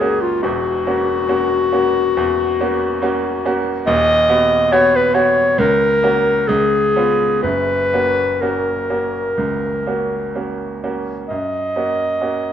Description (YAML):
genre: classical, romantic duo for clarinet and grand piano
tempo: 61-71 BPM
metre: 4/4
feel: rubato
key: F# major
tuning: A4 = 445 Hz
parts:
  - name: mellow clarinet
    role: melody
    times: 0.0-12.5 s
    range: E#4 to D#5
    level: -16 LUFS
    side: left 2 dB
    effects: none
  - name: bright grand piano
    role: accompaniment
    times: 0.0-12.5 s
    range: D#1 to F#4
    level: -20 LUFS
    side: right 3 dB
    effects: none
room: light reverb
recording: close, detailed microphones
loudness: -15 LUFS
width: side -9 dB against mid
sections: 0.0-11.3 A section; 11.3-12.5 B section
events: none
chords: 0.4 F#7/E; 3.9 B/D#; 5.6 F#/C#; 6.5 C#7; 7.4 F#